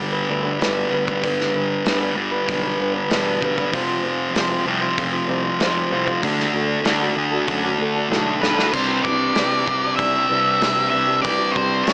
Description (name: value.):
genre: quiet-loud alternative rock.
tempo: 96 BPM.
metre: 4/4.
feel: straight.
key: G mixolydian.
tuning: A4 = 440 Hz.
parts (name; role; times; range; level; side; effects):
fingerpicked old ladder-braced acoustic guitar; arpeggios; 0.0-11.9 s; C3 to C5; -24 LUFS; equal; none.
thick fuzz guitar; riff; 0.0-11.9 s; F2 to D4; -21 LUFS; equal; distortion.
fuzz fingered electric bass; bass; 0.0-11.9 s; E1 to F#2; -29 LUFS; equal; overdrive.
loose indie drum kit; drums; 0.6-11.9 s; crash cymbal, hi-hat, kick drum, snare drum; -25 LUFS; equal; none.
octave-fuzz lead guitar; melody; 8.4-11.9 s; B4 to E5; -19 LUFS; equal; distortion.
room: light reverb.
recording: small speaker sound.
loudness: -17 LUFS.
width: side -34 dB against mid.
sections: 0.0-8.7 A section; 8.7-11.9 B section.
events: drum fill 8.1-8.7.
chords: 0.0 G; 3.7 Fsus2; 6.2 D; 8.7 Cadd9.